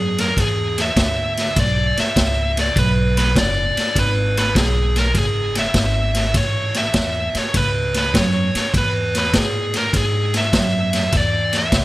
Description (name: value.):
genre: electric blues shuffle.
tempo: 100 BPM.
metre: 4/4.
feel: swing 68% on 8ths.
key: E mixolydian.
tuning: A4 = 440 Hz.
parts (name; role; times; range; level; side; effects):
smooth overdriven lead guitar; melody; 0.0-11.8 s; G#4 to E5; -21 LUFS; right 1 dB; none.
upright bass; bass; 0.0-11.8 s; F#1 to A2; -22 LUFS; equal; none.
raw garage drum kit; drums; 0.2-11.8 s; kick drum, ride cymbal, snare drum; -19 LUFS; equal; none.
room: light reverb.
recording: none.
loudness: -16 LUFS.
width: side -17 dB against mid.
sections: 0.0-11.8 A section.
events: none.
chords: 0.0 E9; 6.3 A; 8.7 Eadd9.